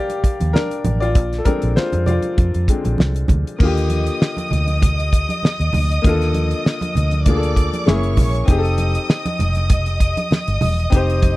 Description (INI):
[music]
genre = lush 1970s-style soul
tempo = 98 BPM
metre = 4/4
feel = swing 54% on 16ths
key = Eb lydian from 3.6 s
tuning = A4 = 441 Hz
[part]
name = clear grand piano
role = accompaniment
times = 0.0-11.4 s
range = D3 to G5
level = -23 LUFS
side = left 2 dB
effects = none
[part]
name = damped 70s drum kit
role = drums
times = 0.1-11.4 s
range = crash cymbal, hi-hat, kick drum, snare drum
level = -17 LUFS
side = equal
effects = none
[part]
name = congas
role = percussion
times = 0.1-11.4 s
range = none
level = -26 LUFS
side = right 3 dB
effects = none
[part]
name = vintage muted fingered electric bass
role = bass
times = 0.2-11.4 s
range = Fb1 to F2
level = -19 LUFS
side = equal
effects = none
[part]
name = warm studio violin section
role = second line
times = 3.6-11.4 s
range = Db5 to Eb6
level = -24 LUFS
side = equal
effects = none
[sound]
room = little or no reverb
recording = dry, close 1970s-style studio recording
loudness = -15 LUFS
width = side -18 dB against mid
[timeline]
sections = 0.0-3.6 A section; 3.6-11.4 B section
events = grand piano solo 0.0-3.6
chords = 0.0 Ebmaj7 (rootless); 1.2 Bb9; 3.6 Ebmaj7; 7.9 Gb9; 8.5 F7